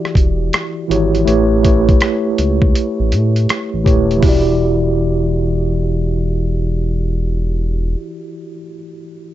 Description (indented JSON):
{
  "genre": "lo-fi hip hop",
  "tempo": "81 BPM",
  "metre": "4/4",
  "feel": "swing 65% on 16ths",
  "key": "E dorian",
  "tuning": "A4 = 441 Hz",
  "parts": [
    { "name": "mellow tine electric piano", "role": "accompaniment", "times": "0.0-9.3 s", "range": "E3 to D5", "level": "-17 LUFS", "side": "right 1 dB", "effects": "medium stereo tremolo, low-pass filter, plate reverb" },
    { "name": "dusty soul sampler-style drum kit", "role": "drums", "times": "0.1-4.5 s", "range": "hi-hat, kick drum, rim click", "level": "-14 LUFS", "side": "equal", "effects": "none" },
    { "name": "smooth synth bass", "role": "bass", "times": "0.2-8.0 s", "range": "D#1 to A2", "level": "-17 LUFS", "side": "equal", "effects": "none" }
  ],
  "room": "light reverb",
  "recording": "dark, warm production, nothing above 7.8 kHz",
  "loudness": "-13 LUFS",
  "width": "side -13 dB against mid",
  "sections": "0.0-4.2 A section; 4.2-7.2 B section",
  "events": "filter sweep on tine electric piano 0.0-4.2",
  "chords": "0.0 Em7; 1.3 A7; 4.2 Em7",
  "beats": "0.53 | 1.27 2.01 2.75 3.49 | 4.23 4.97 5.71 6.45"
}